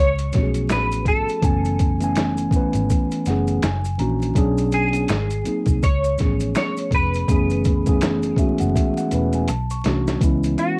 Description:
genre	R&B, neo-soul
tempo	82 BPM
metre	4/4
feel	swing 60% on 16ths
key	unclear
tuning	A4 = 440 Hz
part	semi-hollow electric guitar	melody	0.0-10.8 s	F#4 to C#5	-27 LUFS	equal	ensemble chorus, cassette tape
part	vintage muted fingered electric bass	bass	0.0-10.5 s	E1 to C#2	-26 LUFS	equal	none
part	boom bap sampler-style drum kit	drums	0.2-10.8 s	finger snaps, hi-hat, kick drum, snare drum	-24 LUFS	equal	cassette tape
part	maracas and finger snaps	percussion	0.2-10.8 s	none	-41 LUFS	equal	none
part	mellow tine electric piano	accompaniment	0.3-10.8 s	E3 to C#6	-24 LUFS	equal	cassette tape
room	light reverb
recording	home recording on cassette, vinyl crackle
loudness	-20 LUFS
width	mono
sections	0.0-10.2 A section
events	tine electric piano fill 2.9-4.4, 8.0-10.2; drum fill 9.5-10.2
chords	0.0 C#7b13; 1.4 F#m11; 3.6 F#7b13; 4.4 Bm69; 5.1 G#7; 5.8 C#7b13; 7.3 F#m11; 9.5 Bm11; 10.2 C#m7

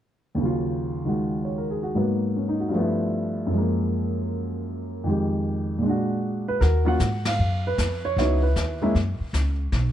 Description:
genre	jazz piano trio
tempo	154 BPM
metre	4/4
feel	swing 64% on 8ths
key	Eb minor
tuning	A4 = 440 Hz
part	dark baby grand piano	melody	0.3-8.9 s	Eb2 to Gb5	-23 LUFS	equal	none
part	upright bass	bass	6.6-9.9 s	B1 to Ab2	-23 LUFS	equal	none
part	jazz brush drum kit	drums	6.6-9.9 s	brushed snare drum, hi-hat, kick drum, ride cymbal, snare drum	-30 LUFS	left 2 dB	none
room	little or no reverb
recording	dark, warm production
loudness	-22 LUFS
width	side -11 dB against mid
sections	0.4-6.6 A section; 6.6-9.9 B section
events	band accent 7.2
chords	0.4 Ebm9; 1.9 Abm9; 2.7 G13; 3.5 Gbmaj9; 5.1 Fm9; 5.8 Bb7b13; 6.6 Ebmadd9; 8.2 Dbm11; 9.0 Gb5

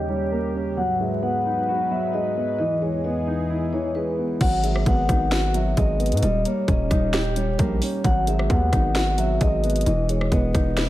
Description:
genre	hip hop, trap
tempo	132 BPM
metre	4/4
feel	half-time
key	G# minor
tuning	A4 = 439 Hz
part	vibraphone with soft mallets	melody	0.0-10.9 s	A#4 to F#5	-26 LUFS	left 2 dB	low-pass filter, tape echo
part	dark grand piano	accompaniment	0.0-10.9 s	E3 to G4	-26 LUFS	right 1 dB	low-pass filter
part	sweeping resonant pad	sustained chords	0.0-4.4 s	D#2 to B4	-29 LUFS	left 1 dB	chorus, low-pass filter
part	distorted 808-style bass	bass	4.4-10.9 s	D#1 to G#2	-23 LUFS	equal	distortion
part	trap drum kit	drums	4.4-10.9 s	crash cymbal, hi-hat, kick drum, rim click, snare drum	-24 LUFS	equal	overdrive
room	moderate plate reverb, RT60 1.7 s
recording	dreamy mix soaked in reverb, vinyl crackle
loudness	-20 LUFS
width	side -15 dB against mid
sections	0.0-4.4 A section; 4.4-10.9 B section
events	filter sweep 0.0-4.4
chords	0.0 D#7; 0.8 G#m7; 2.6 Emaj7; 4.4 G#m7; 6.2 D#7; 8.0 G#m7; 9.9 Emaj7

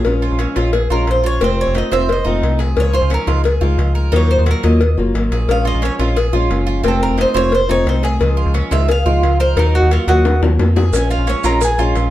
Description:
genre	latin, Cuban son and guajira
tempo	176 BPM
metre	4/4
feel	straight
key	Bb minor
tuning	A4 = 440 Hz
part	picked old ladder-braced acoustic guitar	accompaniment	0.0-12.1 s	C3 to F4	-21 LUFS	left 2 dB	none
part	Cuban tres	arpeggios	0.0-12.1 s	C4 to Eb5	-23 LUFS	right 7 dB	none
part	metallic FM bass	bass	0.0-12.1 s	F1 to F2	-16 LUFS	equal	none
part	cowbell and bongos	percussion	0.0-12.1 s	none	-22 LUFS	left 4 dB	none
part	Cuban tres	melody	0.9-11.9 s	F4 to Ab5	-19 LUFS	equal	plate reverb
part	maracas	percussion	10.9-12.1 s	none	-30 LUFS	right 8 dB	none
room	moderate studio reverb, RT60 0.6 s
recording	dark, warm production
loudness	-13 LUFS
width	side -14 dB against mid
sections	0.1-12.1 A section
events	Cuban tres solo 0.1-12.1; drum fill 10.3-10.9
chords	0.1 Bbm7; 1.4 F7; 2.8 Dbadd9; 4.1 Ebmadd9; 5.5 Bbm7; 6.8 F7; 8.2 Dbadd9; 9.6 Ebmadd9; 10.9 Bbm7

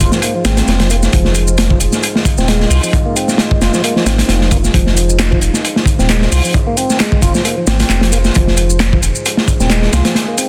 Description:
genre	breakbeat, breaks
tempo	133 BPM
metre	4/4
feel	swing 55% on 16ths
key	unclear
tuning	A4 = 439 Hz
part	deep dark ambient pad	sustained chords	0.0-10.5 s	Ab3 to Eb5	-26 LUFS	equal	chorus, built-in reverb, vintage 12-bit sampler grit, sidechain pumping
part	tonewheel organ	riff	0.0-10.5 s	F3 to F4	-22 LUFS	equal	overdrive, chorus vibrato, slow rotary speaker, tube saturation, vintage 12-bit sampler grit, delay
part	saturated sub bass	bass	0.0-10.0 s	Eb1 to C2	-16 LUFS	equal	none
part	crunchy breakbeat drum kit	drums	0.0-10.5 s	hi-hat, kick drum, snare drum	-16 LUFS	equal	none
part	electronic shaker and handclaps	drums	0.0-10.5 s	none	-24 LUFS	equal	none
room	light reverb, studio ambience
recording	dense, heavily limited modern master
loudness	-13 LUFS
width	mono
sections	0.0-10.5 A section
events	none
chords	0.0 Fm7

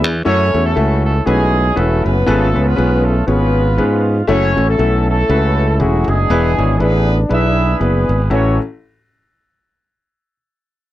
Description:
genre	uptempo gospel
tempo	119 BPM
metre	4/4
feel	swing 56% on 8ths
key	A major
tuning	A4 = 440 Hz
part	warm horn section	melody	0.0-8.6 s	F#3 to E5	-18 LUFS	equal	none
part	warm grand piano	accompaniment	0.0-8.6 s	A1 to C#5	-18 LUFS	left 2 dB	none
part	modern bright fingered electric bass	bass	0.0-8.6 s	E1 to G#2	-15 LUFS	equal	none
room	little or no reverb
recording	dry, close 1970s-style studio recording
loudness	-12 LUFS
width	side -14 dB against mid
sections	0.0-8.3 A section; 8.3-10.3 B section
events	none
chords	0.3 F#m7; 2.3 C#7/G#; 4.3 E7; 8.3 A6

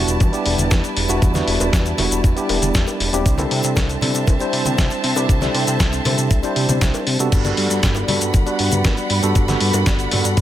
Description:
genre	nu-disco, nu disco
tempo	118 BPM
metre	4/4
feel	straight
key	unclear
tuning	A4 = 440 Hz
part	tine electric piano	accompaniment	0.0-10.4 s	G3 to C5	-22 LUFS	equal	medium stereo tremolo, ping-pong delay
part	warm studio violin section	sustained chords	0.0-10.4 s	G3 to B5	-26 LUFS	right 2 dB	sidechain pumping
part	fat analog bass	bass	0.0-10.4 s	E1 to C3	-22 LUFS	equal	none
part	dusty soul sampler-style drum kit	drums	0.1-10.4 s	crash cymbal, hi-hat, shaker, snare drum	-22 LUFS	left 1 dB	none
part	egg shaker, bongos and congas	percussion	0.1-10.4 s	none	-28 LUFS	left 2 dB	none
part	electronic kick drum	drums	0.2-10.4 s	none	-17 LUFS	equal	none
room	digital ambience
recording	none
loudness	-15 LUFS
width	side -12 dB against mid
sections	0.0-10.4 A section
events	none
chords	0.0 Em7; 3.3 C6; 7.3 Gmaj7

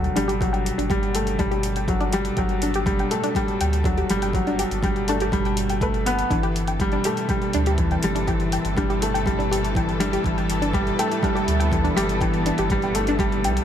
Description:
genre	piano and strings electronica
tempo	122 BPM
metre	4/4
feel	straight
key	G major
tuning	A4 = 441 Hz
part	dark studio string section	sustained chords	0.0-13.6 s	E3 to A4	-32 LUFS	equal	sidechain pumping
part	felt-muted upright piano	riff	0.0-13.6 s	E3 to B3	-23 LUFS	equal	low-pass filter, ping-pong delay
part	warm sub bass	bass	0.0-13.6 s	G1 to D2	-27 LUFS	equal	sidechain pumping
part	electronic hi-hat	drums	0.0-13.6 s	none	-34 LUFS	left 1 dB	none
part	wide unison pluck	arpeggios	0.2-13.5 s	D4 to G5	-28 LUFS	left 1 dB	sidechain pumping, ping-pong delay
part	electronic kick drum	drums	0.4-13.3 s	none	-27 LUFS	equal	none
room	light reverb, digital ambience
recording	none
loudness	-20 LUFS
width	side -9 dB against mid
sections	0.0-13.6 A section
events	fade-in on string section 0.0-13.6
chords	0.0 Gmaj9; 6.3 C6/G

